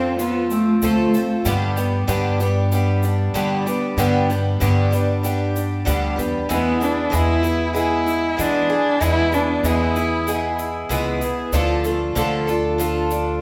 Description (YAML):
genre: acoustic folk duo or small band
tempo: 95 BPM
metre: 4/4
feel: straight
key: unclear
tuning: A4 = 440 Hz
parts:
  - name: warm cello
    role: second line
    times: 0.0-1.3, 6.5-10.6 s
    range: A3 to E4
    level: -23 LUFS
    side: equal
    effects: none
  - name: picked twelve-string acoustic guitar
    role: accompaniment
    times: 0.0-13.4 s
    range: G2 to A4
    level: -25 LUFS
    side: equal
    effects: none
  - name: picked old ladder-braced acoustic guitar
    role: arpeggios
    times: 0.0-13.4 s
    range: E3 to A4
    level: -29 LUFS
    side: equal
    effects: none
  - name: upright bass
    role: bass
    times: 0.0-13.4 s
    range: Db2 to G3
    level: -25 LUFS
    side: equal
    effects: none
  - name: tube shaker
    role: percussion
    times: 0.2-13.3 s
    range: none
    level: -37 LUFS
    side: equal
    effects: none
room: wet large studio reverb, RT60 1.4 s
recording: band playing live in one room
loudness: -20 LUFS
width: mono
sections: 0.0-13.4 A section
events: cello solo 0.0-13.4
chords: 0.0 F; 1.5 G; 6.5 E; 11.5 Dm